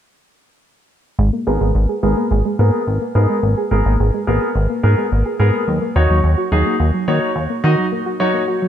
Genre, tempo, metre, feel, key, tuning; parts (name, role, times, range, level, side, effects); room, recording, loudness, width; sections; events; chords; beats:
synth-pop; 107 BPM; 4/4; straight; A4 = 440 Hz
soft round pluck; arpeggios; 1.2-8.7 s; Gb3 to Ab4; -22 LUFS; right 1 dB; chorus, low-pass filter, ping-pong delay
chorused synth bass; bass; 1.2-7.8 s; Ab1 to Eb3; -15 LUFS; equal
clear concert grand piano; accompaniment; 1.5-8.4 s; Cb4 to Eb5; -20 LUFS; equal; wide subtle chorus, low-pass filter
moderate plate reverb, RT60 2.4 s; dreamy mix soaked in reverb; -14 LUFS; side -10 dB against mid
1.2-8.7 A section
filter sweep 1.2-8.7
1.2 Abmadd9; 5.7 Ebm7
| 1.19 1.75 2.31 2.87 | 3.43 3.99 4.55 5.12 | 5.68 6.24 6.80 7.36 | 7.92 8.48